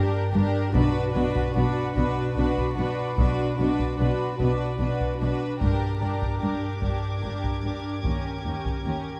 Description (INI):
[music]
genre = cinematic, suspense film score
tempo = 74 BPM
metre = 3/4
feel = straight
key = B harmonic minor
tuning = A4 = 440 Hz
[part]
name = warm studio violin section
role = melody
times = 0.0-9.2 s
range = Bb4 to B4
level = -36 LUFS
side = equal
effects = none
[part]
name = dark studio violin section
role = second line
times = 0.0-9.2 s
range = F#4 to G4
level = -36 LUFS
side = equal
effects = none
[part]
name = rich studio viola section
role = accompaniment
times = 0.0-9.2 s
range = C#4 to D4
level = -33 LUFS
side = equal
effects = none
[part]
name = marimba with medium mallets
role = riff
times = 0.0-9.1 s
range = G2 to D#3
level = -32 LUFS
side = equal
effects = none
[part]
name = warm studio cello section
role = bass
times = 0.0-8.9 s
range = D#2 to B2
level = -32 LUFS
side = equal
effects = none
[part]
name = dark studio double bass section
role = bass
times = 0.3-8.9 s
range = G1 to D#2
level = -33 LUFS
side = equal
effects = none
[part]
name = solo taiko drums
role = drums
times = 0.7-9.2 s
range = none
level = -33 LUFS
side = equal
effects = none
[part]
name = warm studio violin section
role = texture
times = 0.7-9.2 s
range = B5 to G#6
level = -42 LUFS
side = equal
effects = none
[sound]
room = moderate scoring stage reverb, RT60 1.6 s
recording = dark, warm production, vinyl crackle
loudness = -26 LUFS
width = mono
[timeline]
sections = 0.0-9.2 A section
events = none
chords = 0.0 Gm; 0.7 Bm; 5.6 Gm; 8.0 D#7